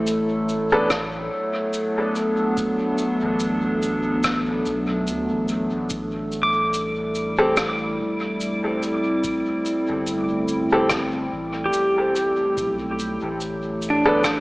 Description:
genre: ambient dub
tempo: 72 BPM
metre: 4/4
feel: swing 56% on 16ths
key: A dorian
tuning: A4 = 440 Hz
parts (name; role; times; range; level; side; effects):
- warbly tape-like pad; sustained chords; 0.0-14.4 s; F#3 to A4; -23 LUFS; equal; chorus, built-in reverb, phaser
- soft dub sub bass; bass; 0.0-14.4 s; E1 to D2; -34 LUFS; equal; tube saturation
- cabasa and rim click; drums; 0.1-14.4 s; none; -28 LUFS; equal; dub echo
- warm upright piano; stabs; 0.7-0.9, 7.4-14.2 s; B3 to A4; -23 LUFS; equal; dub echo
- electronic kick drum; drums; 0.9-14.4 s; none; -41 LUFS; equal; none
- pedal steel guitar; arpeggios; 6.4-14.4 s; D4 to D6; -24 LUFS; equal; dub echo
room: wet scoring stage reverb, RT60 2.0 s, studio ambience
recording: AM radio sound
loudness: -20 LUFS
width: side -22 dB against mid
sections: 0.0-14.4 A section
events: none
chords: 0.0 Bm7; 5.9 Am7; 12.6 Bm7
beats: 0.07 0.91 1.74 | 2.57 3.41 4.24 5.07 | 5.91 6.74 7.57 8.41 | 9.24 10.07 10.91 11.74 | 12.57 13.41 14.24

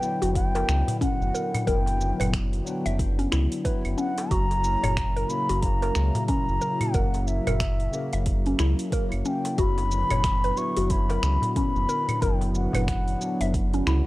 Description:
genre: organic downtempo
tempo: 91 BPM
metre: 4/4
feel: swing 60% on 16ths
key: F# phrygian dominant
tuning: A4 = 439 Hz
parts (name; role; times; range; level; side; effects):
- mellow bansuri; melody; 0.0-13.8 s; E5 to C#6; -30 LUFS; left 1 dB; analog delay
- tine electric piano; accompaniment; 0.0-14.1 s; C#3 to E4; -33 LUFS; left 2 dB; fast stereo tremolo, sidechain pumping, analog delay
- warm analog pad; sustained chords; 0.0-14.1 s; C#3 to E4; -35 LUFS; right 1 dB; lush chorus, sidechain pumping
- mallet-like synth pluck; arpeggios; 0.0-14.1 s; C#4 to E5; -31 LUFS; left 1 dB; chorus, phaser, analog delay
- afro-pop drum kit; drums; 0.0-14.0 s; claves, finger snaps, hi-hat, shaker; -34 LUFS; right 1 dB; studio reverb
- round analog bass; bass; 0.2-14.0 s; F#1 to C#2; -26 LUFS; equal; none
- electronic kick drum; drums; 0.4-13.7 s; none; -27 LUFS; equal; studio reverb
- darbuka; percussion; 0.6-14.0 s; none; -33 LUFS; left 1 dB; none
room: digital ambience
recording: dry, gritty hardware recording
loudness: -22 LUFS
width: side -18 dB against mid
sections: 0.0-14.1 A section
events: none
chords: 0.0 Gmaj7/F#; 4.3 F#7; 9.6 E7sus2/F#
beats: 0.35 1.01 | 1.67 2.33 2.99 3.65 | 4.31 4.97 5.63 6.29 | 6.95 7.61 8.27 8.92 | 9.58 10.24 10.90 11.56 | 12.22 12.88 13.54

